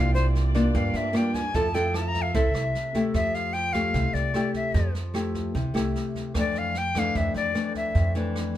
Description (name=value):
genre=bossa nova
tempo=150 BPM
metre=4/4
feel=straight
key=F major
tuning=A4 = 440 Hz
part: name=breathy bright jazz flute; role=melody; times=0.0-8.1 s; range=C5 to Bb5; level=-28 LUFS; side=left 2 dB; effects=none
part: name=nylon-string guitar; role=accompaniment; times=0.0-8.6 s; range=F2 to A4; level=-27 LUFS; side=left 1 dB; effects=none
part: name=muted studio string section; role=sustained chords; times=0.0-3.1 s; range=A3 to E5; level=-37 LUFS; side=equal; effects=none
part: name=upright bass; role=bass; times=0.0-8.6 s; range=C2 to G2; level=-27 LUFS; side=right 1 dB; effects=none
part: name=jazz brush drum kit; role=drums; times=0.2-8.6 s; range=kick drum, rim click, snare drum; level=-34 LUFS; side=right 2 dB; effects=none
room=light reverb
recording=minimal, uncompressed stereo recording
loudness=-23 LUFS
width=side -12 dB against mid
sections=0.0-3.1 A section; 3.1-8.6 B section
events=flute solo 0.0-3.1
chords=0.0 C9sus4; 1.5 Fmaj9; 6.3 Fmaj13